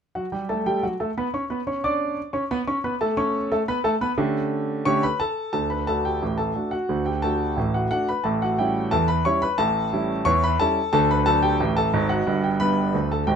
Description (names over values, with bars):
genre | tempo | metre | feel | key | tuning
ragtime piano | 89 BPM | 2/4 | straight | D major | A4 = 440 Hz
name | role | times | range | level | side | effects
warm concert grand piano | solo | 0.2-13.4 s | G1 to D6 | -21 LUFS | equal | none
room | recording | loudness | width
moderate studio reverb, RT60 0.6 s | minimal, uncompressed stereo recording | -21 LUFS | side -7 dB against mid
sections
0.1-5.5 A section; 5.5-13.4 B section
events
none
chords
0.1 D; 2.8 A7; 5.5 D; 8.2 A7; 10.9 D; 12.3 G